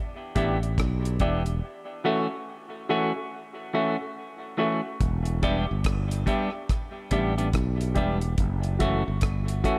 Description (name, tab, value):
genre	dub reggae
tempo	71 BPM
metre	4/4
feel	swing 62% on 16ths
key	E dorian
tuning	A4 = 442 Hz
part	semi-hollow electric guitar	accompaniment	0.4-9.8 s	E3 to G4	-32 LUFS	equal	spring reverb, dub echo
part	dark upright piano	stabs	0.4-9.8 s	F#4 to E5	-35 LUFS	equal	dub echo
part	sustaining fretless electric bass	bass	0.4-9.6 s	E1 to B1	-29 LUFS	equal	none
part	deep reggae drum kit	drums	0.4-9.8 s	hi-hat, kick drum, rim click	-30 LUFS	equal	none
room	light reverb, small room reverb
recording	none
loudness	-27 LUFS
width	mono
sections	0.0-9.8 A section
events	break 1.6-5.0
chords	0.0 Em7; 1.6 F#m7; 5.0 Em7; 8.4 F#m7